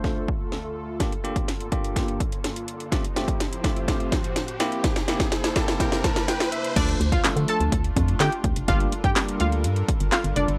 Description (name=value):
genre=dance-pop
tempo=125 BPM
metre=4/4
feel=straight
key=unclear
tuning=A4 = 440 Hz
part: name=bell-like tine electric piano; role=accompaniment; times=0.0-9.6 s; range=F3 to A5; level=-32 LUFS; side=equal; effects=sidechain pumping
part: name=airy breathy pad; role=sustained chords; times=0.0-10.6 s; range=D2 to C5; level=-36 LUFS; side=equal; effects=chorus, sidechain pumping
part: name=house drum kit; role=drums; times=0.0-10.6 s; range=crash cymbal, handclaps, hi-hat, kick drum, snare drum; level=-26 LUFS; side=equal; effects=none
part: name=riser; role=sound effects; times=1.6-6.8 s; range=none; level=-37 LUFS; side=equal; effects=none
part: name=analog pluck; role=melody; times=6.8-10.4 s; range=D4 to A5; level=-30 LUFS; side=equal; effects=chorus, sidechain pumping
part: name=organ-like FM bass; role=bass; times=6.8-10.6 s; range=F1 to D3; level=-26 LUFS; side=equal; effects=sidechain pumping
room=little or no reverb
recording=none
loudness=-24 LUFS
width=mono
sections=0.0-6.8 A section; 6.8-10.6 B section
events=build-up 0.0-6.8; drum fill 0.0-6.8; riser 1.6-6.8; tine electric piano fill 5.3-6.8; drop 6.8-10.6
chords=0.0 Dm; 1.0 Gm7; 2.9 Fadd9/A; 4.6 C7; 6.8 Dm; 8.7 Gm7